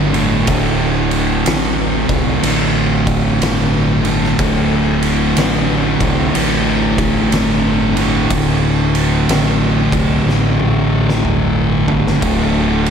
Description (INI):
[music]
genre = stoner and doom metal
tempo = 61 BPM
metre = 4/4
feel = swing 65% on 8ths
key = unclear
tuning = A4 = 440 Hz
[part]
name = thick fuzz guitar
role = riff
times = 0.0-12.9 s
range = D2 to D3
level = -18 LUFS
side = left 10 dB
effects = distortion
[part]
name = thick fuzz guitar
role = riff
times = 0.0-12.9 s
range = D2 to D3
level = -17 LUFS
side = right 8 dB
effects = distortion
[part]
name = growling fingered electric bass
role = bass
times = 0.0-12.9 s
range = D1 to C2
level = -21 LUFS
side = left 1 dB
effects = overdrive
[part]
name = oversized low-tuned drum kit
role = drums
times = 0.1-12.9 s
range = kick drum, ride cymbal, snare drum, toms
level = -19 LUFS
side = equal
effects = none
[sound]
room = light reverb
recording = none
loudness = -12 LUFS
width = side -7 dB against mid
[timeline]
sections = 0.0-12.9 A section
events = drum fill 10.3-12.2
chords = 0.0 D5